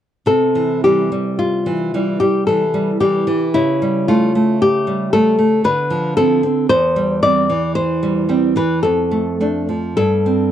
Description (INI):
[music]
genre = romantic duo for nylon-string guitar and classical guitar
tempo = 56 BPM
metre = 3/4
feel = uneven beats, rubato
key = C major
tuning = A4 = 438 Hz
[part]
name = flamenco guitar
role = melody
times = 0.3-10.5 s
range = E4 to D5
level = -16 LUFS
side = left 3 dB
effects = none
[part]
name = nylon-string guitar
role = accompaniment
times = 0.3-10.5 s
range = E2 to D4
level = -17 LUFS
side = right 3 dB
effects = none
[sound]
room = light reverb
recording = dry, close 1970s-style studio recording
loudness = -14 LUFS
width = side -10 dB against mid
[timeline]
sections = 0.3-10.5 A section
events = none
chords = 0.3 C; 3.5 A7/C#; 5.6 Dm7; 6.7 C/E; 8.8 Dm/F; 10.0 C5/G